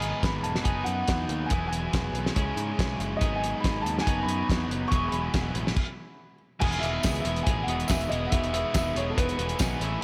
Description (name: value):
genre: indie rock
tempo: 141 BPM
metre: 4/4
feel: straight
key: E major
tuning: A4 = 440 Hz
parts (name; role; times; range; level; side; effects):
- dark upright piano; melody; 0.0-10.0 s; A4 to C#6; -35 LUFS; equal; slapback echo
- biting overdriven guitar; riff; 0.0-10.0 s; E2 to B4; -36 LUFS; equal; slapback echo
- twelve-string electric guitar; riff; 0.0-10.0 s; E2 to G#4; -35 LUFS; equal; lush chorus, slapback echo
- picked electric bass; bass; 0.0-10.0 s; E1 to G#2; -35 LUFS; equal; none
- cloth-damped thuddy drum kit; drums; 0.0-9.9 s; crash cymbal, hi-hat, kick drum, snare drum; -31 LUFS; equal; none
- tonewheel organ; sustained chords; 3.2-5.8 s; F#4 to B5; -48 LUFS; equal; none
- tambourine; percussion; 7.0-9.7 s; none; -44 LUFS; equal; none
room: moderate lush hall reverb, RT60 1.8 s, small room ambience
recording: big arena sound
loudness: -27 LUFS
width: mono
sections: 0.0-6.6 A section; 6.6-10.0 B section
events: stop 5.8-6.6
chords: 0.0 G#m7; 0.6 B6/F#; 1.5 Eadd9; 2.4 C#m; 3.2 G#m7; 4.1 B6/F#; 4.9 Eadd9; 5.8 N.C.; 6.6 Emaj7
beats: 0.22 0.65 1.07 | 1.50 1.93 2.35 2.78 | 3.21 3.63 4.06 4.48 | 4.91 5.33 5.76 6.19 | 6.61 7.04 7.46 7.89 | 8.31 8.74 9.16 9.59 | 10.02